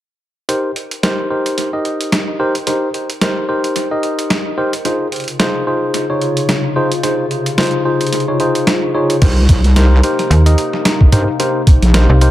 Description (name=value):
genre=glitch hop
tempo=110 BPM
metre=4/4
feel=swing 57% on 16ths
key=unclear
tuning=A4 = 439 Hz
part: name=tine electric piano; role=stabs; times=0.5-12.3 s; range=Eb4 to Eb5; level=-17 LUFS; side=equal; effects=vintage 12-bit sampler grit, sidechain pumping, low-pass filter, analog delay
part: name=boom bap sampler-style drum kit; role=drums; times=0.5-12.3 s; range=crash cymbal, hi-hat, snare drum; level=-19 LUFS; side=equal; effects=analog delay
part: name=warbly tape-like pad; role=sustained chords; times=5.2-12.3 s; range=C3 to F4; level=-21 LUFS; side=left 3 dB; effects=chorus, built-in reverb, sidechain pumping
part: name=wobble bass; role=bass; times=9.2-12.1 s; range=Bb1 to G2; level=-10 LUFS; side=equal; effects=chorus
part: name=electronic kick drum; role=drums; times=9.2-11.8 s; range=none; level=-9 LUFS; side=equal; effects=none
part: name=slap-like FM bass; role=bass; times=10.3-12.3 s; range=C2 to Eb2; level=-8 LUFS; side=equal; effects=none
room=moderate plate reverb, RT60 2.0 s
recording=echo-heavy mix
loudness=-12 LUFS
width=side -14 dB against mid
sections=0.5-9.2 A section; 9.2-12.3 B section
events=none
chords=0.5 Cm7; 4.9 Dbmaj7; 9.2 Cm7